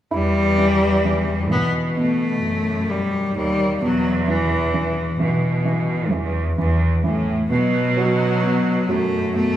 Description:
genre	pop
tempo	65 BPM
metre	4/4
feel	straight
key	E minor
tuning	A4 = 440 Hz
part	rich cello	melody	0.1-9.6 s	E3 to B3	-21 LUFS	left 2 dB	none
part	felt-muted upright piano	accompaniment	0.1-9.6 s	B2 to E4	-22 LUFS	equal	none
part	clear chamber cello section	bass	0.1-9.6 s	D#2 to B2	-22 LUFS	right 1 dB	none
room	wet recital hall reverb, RT60 1.6 s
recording	recorded in a church or concert hall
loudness	-17 LUFS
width	side -12 dB against mid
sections	0.1-9.6 A section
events	none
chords	0.1 Emadd9; 7.5 B5

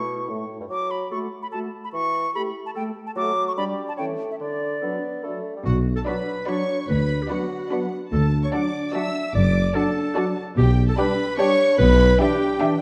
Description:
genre	cinematic, playful, whimsical film cue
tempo	146 BPM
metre	3/4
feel	straight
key	D major, B minor from 5.7 s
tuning	A4 = 439 Hz
part	bright concert flute	second line	0.0-12.7 s	D5 to D6	-32 LUFS	equal	none
part	clear clarinet	second line	0.0-12.8 s	E4 to E5	-27 LUFS	equal	none
part	mellow bassoon	accompaniment	0.0-12.8 s	G2 to D4	-34 LUFS	equal	none
part	mellow French horn section	sustained chords	0.0-12.8 s	E3 to G4	-33 LUFS	equal	none
part	rich studio cello section	bass	5.6-12.1 s	D2 to B2	-28 LUFS	equal	none
part	rich studio violin section	melody	5.7-12.8 s	F#5 to E6	-36 LUFS	equal	none
part	mellow tuba	bass	5.7-12.1 s	F#1 to D2	-27 LUFS	equal	none
part	rich studio double bass section	bass	5.7-12.1 s	F#1 to D2	-25 LUFS	equal	none
part	rich studio violin section	second line	6.1-12.8 s	D5 to B5	-35 LUFS	equal	none
part	warm studio viola section	accompaniment	6.1-12.8 s	D4 to G4	-30 LUFS	equal	none
room	wet scoring stage reverb, RT60 1.7 s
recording	dark, warm production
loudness	-23 LUFS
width	mono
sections	0.0-5.7 A section; 5.7-12.8 B section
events	none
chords	0.0 A; 0.7 F#madd11; 1.9 A7/E; 3.2 D/F#; 3.6 G5; 4.0 A/E; 4.4 D; 5.7 Bm; 6.9 Bm/D; 8.1 D; 9.4 D/F#; 10.6 G/B; 11.8 Em7/B

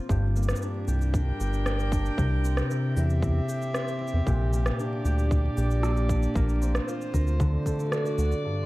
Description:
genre	folktronica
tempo	115 BPM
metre	4/4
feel	straight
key	G dorian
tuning	A4 = 440 Hz
part	concert harp	arpeggios	0.0-8.7 s	G2 to Bb4	-29 LUFS	left 1 dB	low-pass filter, digital delay
part	dark string quartet	sustained chords	0.1-8.7 s	Bb2 to G5	-34 LUFS	right 1 dB	none
part	round analog bass	bass	0.1-8.3 s	G1 to E2	-25 LUFS	equal	none
part	electronic kick drum	drums	0.1-7.8 s	none	-28 LUFS	equal	none
part	electronic shaker and rim click	drums	0.1-8.4 s	none	-35 LUFS	equal	low-pass filter on snare, low-pass filter on perc, low-pass filter on room
room	light reverb, digital ambience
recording	dark, warm production, vinyl crackle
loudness	-24 LUFS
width	side -19 dB against mid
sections	0.0-8.4 A section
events	none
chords	0.1 Gm; 2.2 C; 4.3 Gm/Bb; 6.4 Bbsus2; 7.4 D

